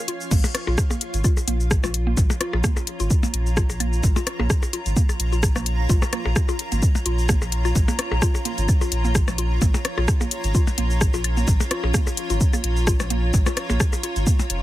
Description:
minimal techno; 129 BPM; 4/4; swing 55% on 16ths; Bb minor; A4 = 439 Hz
granular cloud pad; texture; 0.0-14.6 s; F4 to Bb5; -30 LUFS; right 1 dB; built-in reverb, sidechain pumping
mallet-like synth pluck; riff; 0.1-14.3 s; Bb3 to F4; -30 LUFS; right 1 dB; chorus, sidechain pumping, tape echo
house drum kit; drums; 0.1-14.6 s; crash cymbal, hi-hat, rim click, shaker; -26 LUFS; left 2 dB; overdrive
saturated sub bass; bass; 0.3-14.6 s; F1 to Bb1; -22 LUFS; equal; sidechain pumping
electronic kick drum; drums; 0.3-14.4 s; -20 LUFS; equal; overdrive
electronic percussion blips, rim click and claves; percussion; 0.3-14.5 s; -29 LUFS; left 4 dB; ping-pong delay
little or no reverb; -19 LUFS; side -15 dB against mid
0.3-14.6 A section
break 0.0-0.3; drop 0.3-14.6
0.3 Bbm

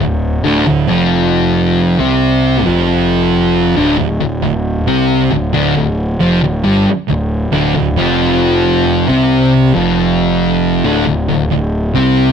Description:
metal; 68 BPM; 4/4; straight; D minor; A4 = 439 Hz
thick fuzz guitar; riff; 0.0-12.3 s; D2 to C4; -14 LUFS; left 8 dB; distortion
thick fuzz guitar; riff; 0.0-12.3 s; D2 to C4; -15 LUFS; right 11 dB; distortion
fuzz picked electric bass; bass; 0.0-12.3 s; D1 to C2; -18 LUFS; equal; overdrive
small room reverb; -11 LUFS; side -7 dB against mid
0.0-12.3 A section
0.0 Dm

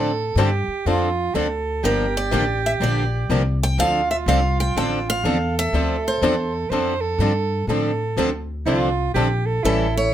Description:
acoustic string swing (jazz manouche); 123 BPM; 4/4; swing 65% on 8ths; D minor; A4 = 444 Hz
mellow soprano saxophone; second line; 0.0-10.1 s; E4 to C5; -25 LUFS; right 5 dB
picked steel-string acoustic guitar; accompaniment; 0.0-9.9 s; D3 to A4; -28 LUFS; right 6 dB
picked swing-style acoustic guitar; accompaniment; 0.0-9.9 s; D3 to A4; -24 LUFS; left 5 dB
upright bass; bass; 0.0-10.1 s; G1 to A2; -23 LUFS; left 1 dB
picked steel-string acoustic guitar; melody; 1.9-6.5, 9.7-10.1 s; A4 to G5; -23 LUFS; right 1 dB
light reverb; -18 LUFS; side -11 dB against mid
0.0-10.1 A section
0.0 Dm7; 1.8 Gm7; 3.8 Dm7; 9.6 A7

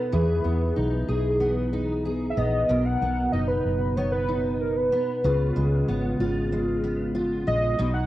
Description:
indie pop, bedroom pop; 94 BPM; 4/4; straight; A4 = 442 Hz
warm velvety synth lead; melody; 0.0-8.1 s; A#4 to F#5; -27 LUFS; right 1 dB; wide subtle chorus, cassette tape, plate reverb, tape echo
fingerpicked steel-string acoustic guitar; accompaniment; 0.0-8.1 s; B2 to A#4; -26 LUFS; equal; ensemble chorus, vibrato effect, cassette tape, plate reverb
vintage muted fingered electric bass; bass; 0.1-8.1 s; F#1 to E2; -27 LUFS; equal
moderate studio reverb, RT60 0.6 s; home recording on cassette; -22 LUFS; side -15 dB against mid
0.0-8.1 A section
0.1 Emaj7; 2.7 Bmaj7; 5.2 C#7

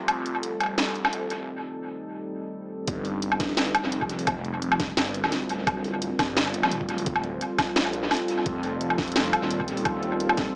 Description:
half-time drum and bass; 172 BPM; 4/4; swing 54% on 16ths, half-time; G minor; A4 = 441 Hz
deep dark ambient pad; sustained chords; 0.0-10.6 s; G3 to Bb4; -30 LUFS; equal; chorus, built-in reverb, sidechain pumping
phased detuned saw bass; bass; 0.0-10.5 s; D1 to C2; -32 LUFS; equal; phaser, high-pass filter
drum and bass drum kit; drums; 0.1-10.4 s; hi-hat, snare drum, woodblock; -25 LUFS; equal; overdrive, studio reverb, dub echo
electronic kick drum; drums; 2.9-10.5 s; -33 LUFS; equal; overdrive, studio reverb
moderate plate reverb, RT60 0.9 s; echo-heavy mix, small speaker sound; -24 LUFS; side -29 dB against mid
0.0-2.9 A section; 2.9-10.6 B section
build-up 0.0-2.9; break 1.5-2.9; drop 2.9-10.6
0.0 F; 2.9 Gm; 8.5 F

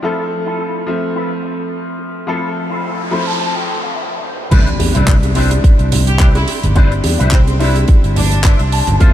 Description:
nu-disco, nu disco; 107 BPM; 4/4; swing 55% on 16ths; C major; A4 = 439 Hz
bright baby grand piano; accompaniment; 0.0-9.1 s; F3 to B5; -21 LUFS; left 1 dB; sidechain pumping, diffuse ambient delay
electric guitar with an envelope filter; riff; 0.0-9.1 s; E4 to B5; -23 LUFS; left 3 dB; ensemble chorus, low-pass filter, diffuse ambient delay
noise sweep and impact; sound effects; 2.6-6.8 s; -23 LUFS; equal
fingered electric bass; bass; 4.5-9.1 s; G1 to F2; -15 LUFS; equal
damped 70s drum kit; drums; 4.5-9.1 s; crash cymbal, handclaps, hi-hat; -22 LUFS; right 3 dB
electronic kick drum; drums; 4.5-9.1 s; -10 LUFS; equal
congas and bongos; percussion; 4.5-9.1 s; -22 LUFS; right 2 dB
bright studio violin section; melody; 6.1-8.6 s; C4 to G4; -24 LUFS; right 1 dB; diffuse ambient delay
light reverb, small room ambience; -12 LUFS; side -12 dB against mid
0.0-4.5 A section; 4.5-9.1 B section
noise sweep 2.6-4.5; clean electric guitar fill 2.8-4.5, 7.9-9.0; drop 4.5-9.1; impact 4.5-6.8
0.0 Fmaj7; 4.5 Cmaj9

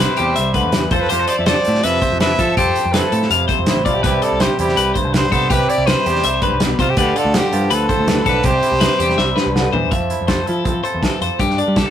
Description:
math rock and midwest emo; 163 BPM; 4/4; straight; C major; A4 = 440 Hz
brilliant trumpet; melody; 0.0-9.6 s; F4 to E5; -20 LUFS; equal
twangy electric guitar; accompaniment; 0.0-11.9 s; G2 to A4; -21 LUFS; right 5 dB
twelve-string electric guitar; arpeggios; 0.0-11.9 s; G4 to F5; -20 LUFS; left 6 dB
growling picked electric bass; bass; 0.0-11.8 s; A1 to G3; -22 LUFS; equal; overdrive
loose indie drum kit; drums; 0.2-11.9 s; hi-hat, kick drum, snare drum, toms; -20 LUFS; equal
moderate studio ambience, RT60 0.5 s; rough rehearsal-room recording, tube saturation; -14 LUFS; side -10 dB against mid
0.0-9.9 A section; 9.9-11.9 B section
drum fill 9.2-9.9
0.0 Cmaj7; 0.9 Fmaj7; 4.0 Cmaj7; 7.0 Dm7; 8.4 Cmaj7; 9.9 Fmaj7; 11.4 Gsus2

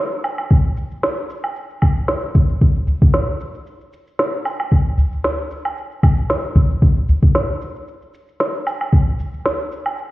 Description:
downtempo; 114 BPM; 4/4; swing 54% on 16ths
electronic shaker, woodblock and snare drum; drums; 0.1-10.1 s; -22 LUFS; equal
electronic kick drum; drums; 0.5-9.0 s; -13 LUFS; equal
udu; percussion; 2.9-9.3 s; -19 LUFS; equal
moderate lush hall reverb, RT60 1.8 s; heard muffled through a wall, stone room reverb, EQ; -16 LUFS; side -17 dB against mid
0.0-10.1 A section

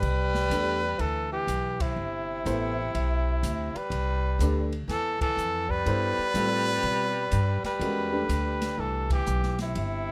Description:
modal jazz; 123 BPM; 4/4; swing 66% on 8ths; C major; A4 = 441 Hz
clear trumpet; melody; 0.0-10.1 s; E4 to B4; -32 LUFS; equal
clear tenor saxophone; second line; 0.0-10.1 s; C3 to G3; -37 LUFS; equal
upright bass; bass; 0.0-10.1 s; G1 to B2; -32 LUFS; equal
open jazz drum kit; drums; 0.0-9.9 s; crash cymbal, hi-hat, kick drum, ride cymbal, snare drum; -38 LUFS; equal
warm concert grand piano; accompaniment; 0.5-9.2 s; G3 to C5; -34 LUFS; equal
light reverb; close, detailed microphones; -28 LUFS; mono
0.0-10.1 A section
band accent 1.7, 5.1, 9.0
0.0 Cmaj9

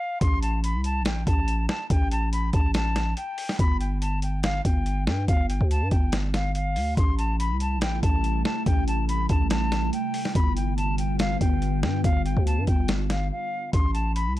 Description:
hip hop, trap; 142 BPM; 4/4; half-time; A minor; A4 = 444 Hz
silver concert flute; melody; 0.0-14.4 s; F5 to C6; -30 LUFS; left 1 dB; low-pass filter
growling 808-style bass; bass; 0.2-14.4 s; G1 to G2; -26 LUFS; equal
boom bap sampler-style drum kit; drums; 0.2-14.4 s; hi-hat, kick drum, snare drum; -24 LUFS; equal
glassy FM pad; sustained chords; 7.5-13.7 s; C3 to F4; -32 LUFS; equal; ensemble chorus, built-in reverb, phaser
digital ambience; dark, warm production; -22 LUFS; side -15 dB against mid
0.2-13.7 A section
stop 0.0; break 13.3-13.7
0.2 A7(no3); 3.6 G5; 7.0 Am7; 10.4 G7; 13.7 Am

